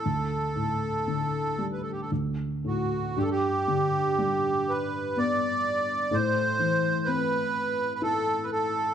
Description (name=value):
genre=celtic folk, Celtic slow air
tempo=56-64 BPM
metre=3/4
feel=rubato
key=G major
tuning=A4 = 439 Hz
part: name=accordion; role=melody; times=0.0-8.9 s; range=F#4 to D5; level=-26 LUFS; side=right 2 dB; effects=light tremolo tuning
part: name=felt-muted upright piano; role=accompaniment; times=0.0-8.9 s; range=D2 to E4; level=-29 LUFS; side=left 2 dB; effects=none
room=moderate recital hall reverb, RT60 1.4 s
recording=dark, warm production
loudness=-25 LUFS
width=side -8 dB against mid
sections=0.0-3.2 A section; 3.2-8.9 B section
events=none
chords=0.0 Dsus4; 2.1 D; 3.2 G; 6.1 Am